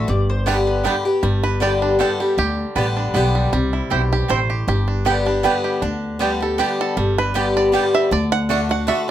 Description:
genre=bluegrass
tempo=157 BPM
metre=3/4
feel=swing 53% on 8ths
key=G major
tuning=A4 = 440 Hz
part: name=mandolin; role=melody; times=0.0-1.1 s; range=B4 to D5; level=-31 LUFS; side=left 3 dB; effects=none
part: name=picked swing-style acoustic guitar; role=accompaniment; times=0.0-9.1 s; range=G2 to G4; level=-20 LUFS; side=left 2 dB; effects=none
part: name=upright bass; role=bass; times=0.0-8.9 s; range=G1 to D2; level=-22 LUFS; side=equal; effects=none
part: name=bluegrass banjo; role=melody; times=0.5-9.1 s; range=G3 to F#5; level=-24 LUFS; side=right 4 dB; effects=none
part: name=mandolin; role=stabs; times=0.5-9.0 s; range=A3 to G5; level=-22 LUFS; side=right 7 dB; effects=none
room=moderate studio ambience, RT60 0.5 s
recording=none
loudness=-16 LUFS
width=side -11 dB against mid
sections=0.0-1.2 A section; 1.2-9.1 B section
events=five-string banjo solo 1.2-9.1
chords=0.1 G; 3.5 C; 4.7 G; 8.1 D

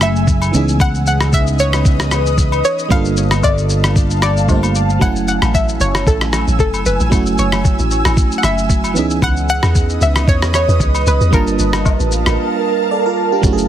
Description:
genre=amapiano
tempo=114 BPM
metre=4/4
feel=swing 55% on 16ths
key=unclear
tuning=A4 = 441 Hz
part: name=analog pluck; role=melody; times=0.0-12.3 s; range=A4 to F#5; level=-20 LUFS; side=left 1 dB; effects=chorus, ping-pong delay
part: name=FM electric piano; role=accompaniment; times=0.0-13.7 s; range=E3 to A5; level=-20 LUFS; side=right 4 dB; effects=chorus
part: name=ethereal airy pad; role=sustained chords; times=0.0-13.7 s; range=A3 to E6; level=-22 LUFS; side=right 1 dB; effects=ensemble chorus, built-in reverb, sidechain pumping
part: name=fingered electric bass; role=bass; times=0.0-5.0 s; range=F#1 to C#2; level=-16 LUFS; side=equal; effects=none
part: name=dusty soul sampler-style drum kit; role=drums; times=0.0-13.7 s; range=kick drum, rim click, shaker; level=-17 LUFS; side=equal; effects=none
part: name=agogo bells and woodblock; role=percussion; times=0.0-12.4 s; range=none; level=-27 LUFS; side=left 5 dB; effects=none
part: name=deep log drum bass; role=bass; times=5.0-13.7 s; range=F#1 to E2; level=-17 LUFS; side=equal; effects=none
room=little or no reverb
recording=heavily compressed radio sound, multiband compression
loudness=-12 LUFS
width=side -11 dB against mid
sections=0.0-13.4 A section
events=none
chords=0.0 F#m9; 0.5 C#m9; 2.9 Gm9; 5.0 F#m9; 9.0 C#m9; 11.3 Gm9

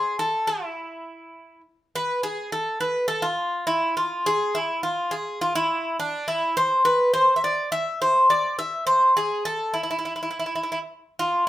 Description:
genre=greek folk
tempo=104 BPM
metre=2/4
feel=straight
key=E phrygian dominant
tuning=A4 = 441 Hz
part: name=Greek bouzouki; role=solo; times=0.0-11.4 s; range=D4 to E5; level=-21 LUFS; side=equal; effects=none
room=moderate large studio reverb, RT60 0.8 s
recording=band playing live in one room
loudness=-21 LUFS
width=side -14 dB against mid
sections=0.0-1.9 A section; 1.9-11.2 A section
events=speeding up 0.0-11.5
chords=none

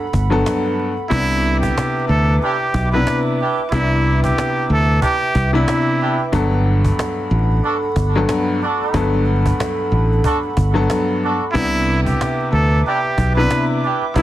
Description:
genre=hip hop, boom-bap hip-hop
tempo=92 BPM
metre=4/4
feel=swing 59% on 16ths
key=unclear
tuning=A4 = 440 Hz
part: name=clear upright piano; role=accompaniment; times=0.0-14.2 s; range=G2 to A4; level=-20 LUFS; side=left 2 dB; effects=cassette tape
part: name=dark analog pad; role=sustained chords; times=0.0-14.2 s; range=A4 to D6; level=-25 LUFS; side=right 2 dB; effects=chorus
part: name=cajon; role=drums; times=0.0-14.2 s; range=none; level=-25 LUFS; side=equal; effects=none
part: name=fingered electric bass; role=bass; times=0.1-14.2 s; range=G1 to D2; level=-17 LUFS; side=equal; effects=none
part: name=trumpet with straight mute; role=melody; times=1.1-6.3, 11.5-14.2 s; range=E4 to B4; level=-21 LUFS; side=right 2 dB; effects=none
part: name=muted trumpet section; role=stabs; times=2.4-14.0 s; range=D4 to A4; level=-25 LUFS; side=right 3 dB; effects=tape echo
room=light reverb, studio reverb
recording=dense, heavily limited modern master, vinyl crackle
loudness=-15 LUFS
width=side -14 dB against mid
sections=0.0-1.1 A section; 1.1-14.2 B section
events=none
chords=0.0 Gmaj9; 1.1 Cmaj9; 6.3 Gmaj9; 11.5 Cmaj9

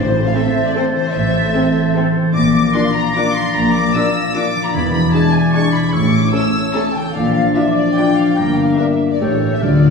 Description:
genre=classical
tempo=148 BPM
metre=3/4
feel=uneven beats, rubato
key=unclear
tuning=A4 = 441 Hz
part: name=rich studio violin section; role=melody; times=0.0-9.9 s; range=C5 to E6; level=-23 LUFS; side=left 3 dB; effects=none
part: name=mellow hollow silver concert flute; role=second line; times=0.0-9.9 s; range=D6 to Bb6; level=-27 LUFS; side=equal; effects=none
part: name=rich studio violin section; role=second line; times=0.0-9.9 s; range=C5 to E6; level=-25 LUFS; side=left 2 dB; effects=none
part: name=warm oboe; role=second line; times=0.0-9.9 s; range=A4 to D5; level=-26 LUFS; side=equal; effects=none
part: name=concert harp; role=arpeggios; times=0.0-9.9 s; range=E2 to D6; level=-20 LUFS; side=left 2 dB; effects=none
part: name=rich studio cello section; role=bass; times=0.0-9.9 s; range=E2 to D3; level=-21 LUFS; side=equal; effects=none
part: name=rich studio double bass section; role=bass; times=0.0-9.9 s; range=E1 to D2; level=-22 LUFS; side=right 2 dB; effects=none
part: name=timpani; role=percussion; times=0.0-0.5, 9.6-9.9 s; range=A2 to D3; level=-22 LUFS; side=equal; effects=none
part: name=warm studio viola section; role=accompaniment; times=0.3-9.3 s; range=A3 to Bb4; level=-25 LUFS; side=equal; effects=none
part: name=mellow French horn section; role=sustained chords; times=0.4-9.9 s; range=F3 to G4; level=-20 LUFS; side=left 3 dB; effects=none
room=wet scoring stage reverb, RT60 1.7 s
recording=heard from further back in the room, studio reverb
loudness=-13 LUFS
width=side -5 dB against mid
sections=0.0-9.9 A section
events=none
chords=0.0 Am; 2.3 Bb; 4.7 E7; 5.9 A; 7.1 Bb; 8.4 Gm; 9.2 A7

